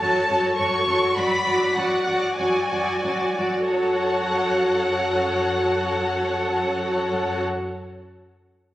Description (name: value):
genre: classical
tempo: 87-108 BPM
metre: 4/4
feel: rubato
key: F# minor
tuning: A4 = 440 Hz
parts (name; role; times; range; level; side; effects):
- warm studio violin section; melody; 0.0-7.4 s; F#5 to C#6; -25 LUFS; left 1 dB; none
- warm symphonic violin section; second line; 0.0-7.4 s; F#4 to D5; -25 LUFS; equal; none
- warm symphonic viola section; accompaniment; 0.0-7.4 s; F#3 to F#4; -24 LUFS; equal; none
- dark studio cello section; bass; 0.0-7.4 s; F#2; -34 LUFS; equal; none
room: wet scoring stage reverb, RT60 1.5 s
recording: recorded on a phone in the room, club reverb, compression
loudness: -20 LUFS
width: side -14 dB against mid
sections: 0.0-3.7 A section; 3.7-8.7 B section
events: slowing down 0.0-3.7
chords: 0.0 F#m